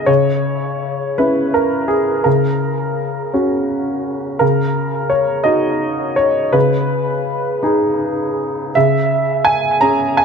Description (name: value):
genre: neoclassical minimalist piano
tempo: 56 BPM (dotted quarters)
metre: 6/8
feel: rubato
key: C# dorian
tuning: A4 = 440 Hz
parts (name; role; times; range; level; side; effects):
- clear upright piano; solo; 0.0-10.2 s; C#3 to A#5; -14 LUFS; equal; tape echo
room: light reverb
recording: close, detailed microphones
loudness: -14 LUFS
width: side -6 dB against mid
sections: 0.1-10.2 A section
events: none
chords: 0.1 C#m; 2.3 F#/C#; 4.4 D#m/C#; 6.5 G#m/C#; 8.7 C#m